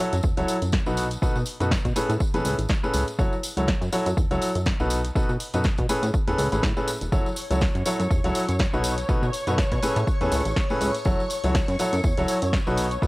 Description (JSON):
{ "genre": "piano house", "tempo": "122 BPM", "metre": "4/4", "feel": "swing 56% on 16ths", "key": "F# dorian", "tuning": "A4 = 439 Hz", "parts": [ { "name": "clear grand piano", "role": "riff", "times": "0.0-13.1 s", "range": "A2 to C#5", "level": "-26 LUFS", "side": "equal", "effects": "sidechain pumping" }, { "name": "plucky analog bass", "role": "bass", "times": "0.1-13.0 s", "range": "E1 to B2", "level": "-26 LUFS", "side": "equal", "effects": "sidechain pumping" }, { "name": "punchy analog drum machine", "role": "drums", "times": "0.1-13.0 s", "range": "hi-hat, snare drum", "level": "-32 LUFS", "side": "equal", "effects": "cassette tape" }, { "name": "tambourine", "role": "percussion", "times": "0.1-13.1 s", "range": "none", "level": "-36 LUFS", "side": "equal", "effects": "none" }, { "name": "electronic kick drum", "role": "drums", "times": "0.2-13.1 s", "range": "none", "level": "-24 LUFS", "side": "equal", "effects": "cassette tape" }, { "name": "string machine, violins", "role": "sustained chords", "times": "7.1-13.1 s", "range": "C#5 to C#6", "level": "-31 LUFS", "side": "left 1 dB", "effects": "ensemble chorus, sidechain pumping" } ], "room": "light reverb", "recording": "home recording on cassette", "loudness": "-21 LUFS", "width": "side -22 dB against mid", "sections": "0.0-13.1 A section", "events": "none", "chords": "0.0 F#m7; 1.0 B7; 2.0 Amaj9; 3.2 F#m7; 4.9 B7; 5.9 Amaj9; 7.1 F#m7; 8.8 B7; 9.8 Amaj9; 11.1 F#m7" }